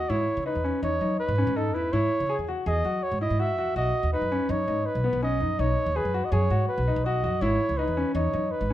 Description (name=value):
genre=contemporary instrumental, chamber music in an uneven meter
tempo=164 BPM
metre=5/4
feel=straight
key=unclear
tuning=A4 = 440 Hz
part: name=mellow flugelhorn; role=melody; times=0.0-8.7 s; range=A4 to E5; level=-28 LUFS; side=right 2 dB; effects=none
part: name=clear grand piano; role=arpeggios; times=0.0-8.7 s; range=B3 to G#4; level=-28 LUFS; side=left 3 dB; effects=none
part: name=upright bass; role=bass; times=0.0-8.7 s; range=G#1 to F#3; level=-28 LUFS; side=equal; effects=none
room=light reverb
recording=dark, warm production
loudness=-23 LUFS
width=side -13 dB against mid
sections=0.0-8.7 A section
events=none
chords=0.1 Emaj13; 3.8 B; 7.4 A/G# (rootless)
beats=| 0.10 0.47 0.83 1.20 1.56 | 1.93 2.30 2.67 3.03 3.40 | 3.77 4.13 4.50 4.86 5.23 | 5.60 5.96 6.33 6.70 7.06 | 7.43 7.79 8.16 8.53